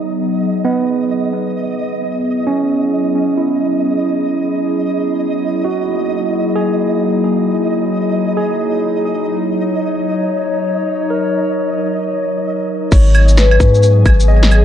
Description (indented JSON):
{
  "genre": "future garage",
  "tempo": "132 BPM",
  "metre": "4/4",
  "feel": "swing 60% on 16ths",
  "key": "G# minor",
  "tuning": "A4 = 443 Hz",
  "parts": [
    { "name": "overdriven tine electric piano", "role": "accompaniment", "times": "0.0-14.6 s", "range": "B3 to D#5", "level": "-20 LUFS", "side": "right 3 dB", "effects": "sidechain pumping, analog delay" },
    { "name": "warbly tape-like pad", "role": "sustained chords", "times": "0.0-14.6 s", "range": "F#3 to C#5", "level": "-18 LUFS", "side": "left 2 dB", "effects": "chorus, built-in reverb, sidechain pumping" },
    { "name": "flickering grainy texture", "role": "texture", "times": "0.0-14.6 s", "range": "D#5 to G#5", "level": "-24 LUFS", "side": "right 3 dB", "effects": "built-in reverb" },
    { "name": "warm sub bass", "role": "bass", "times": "12.9-14.6 s", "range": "G#1 to G#2", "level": "-10 LUFS", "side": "equal", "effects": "sidechain pumping" },
    { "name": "electronic kick drum", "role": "drums", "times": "12.9-14.2 s", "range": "none", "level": "-10 LUFS", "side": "equal", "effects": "overdrive, vintage 12-bit sampler grit" },
    { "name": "garage drum kit", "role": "drums", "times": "12.9-14.6 s", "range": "cabasa, claves, crash cymbal, shaker, snare drum", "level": "-19 LUFS", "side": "right 2 dB", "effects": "overdrive, low-pass filter on perc, vintage 12-bit sampler grit, low-pass filter on snare, low-pass filter on cymbals, tape echo" },
    { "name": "vibraphone with medium hard mallets", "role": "melody", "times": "13.4-14.6 s", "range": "G#4 to B4", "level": "-16 LUFS", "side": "left 4 dB", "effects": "tape echo" }
  ],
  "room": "moderate spring reverb, RT60 1.7 s",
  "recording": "echo-heavy mix",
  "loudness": "-13 LUFS",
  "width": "side -10 dB against mid",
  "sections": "0.0-12.9 A section; 12.9-14.6 B section",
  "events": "filter sweep on drum 0.0-12.9",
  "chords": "0.0 G#m7; 2.0 F#9sus4; 5.6 Emaj9#11; 9.3 D#m7; 12.9 G#m7",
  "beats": "| 0.19 0.65 1.10 1.56 | 2.01 2.46 2.92 3.37 | 3.83 4.28 4.74 5.19 | 5.65 6.10 6.56 7.01 | 7.46 7.92 8.37 8.83 | 9.28 9.74 10.19 10.65 | 11.10 11.56 12.01 12.46 | 12.92 13.37 13.83 14.28"
}